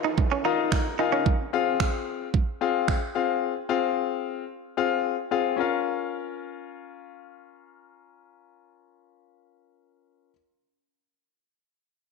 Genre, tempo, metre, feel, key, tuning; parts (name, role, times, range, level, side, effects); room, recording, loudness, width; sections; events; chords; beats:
dance-pop; 111 BPM; 4/4; straight; Bb minor; A4 = 442 Hz
clear concert grand piano; accompaniment; 0.0-10.3 s; C4 to Bb5; -26 LUFS; left 9 dB; sidechain pumping
direct-recorded clean electric guitar; riff; 0.0-1.2 s; Db4 to Eb4; -29 LUFS; right 10 dB; wide subtle chorus
downlifter; sound effects; 0.0-1.3 s; -38 LUFS; right 2 dB
pop drum kit; drums; 0.2-3.0 s; finger snaps, kick drum; -26 LUFS; right 4 dB; overdrive
moderate echo chamber reverb, RT60 1.6 s, digital ambience; 1960s-style stereo with parts hard left and right; -24 LUFS; side -4 dB against mid
0.0-5.6 A section; 5.6-9.9 B section
grand piano fill 0.2-1.3
0.0 Ebsus2; 1.3 Fm; 5.6 Bbm
0.18 0.72 | 1.26 1.80 2.34 2.88 | 3.42 3.96 4.50 5.04 | 5.58 6.12 6.67 7.21 | 7.75 8.29 8.83 9.37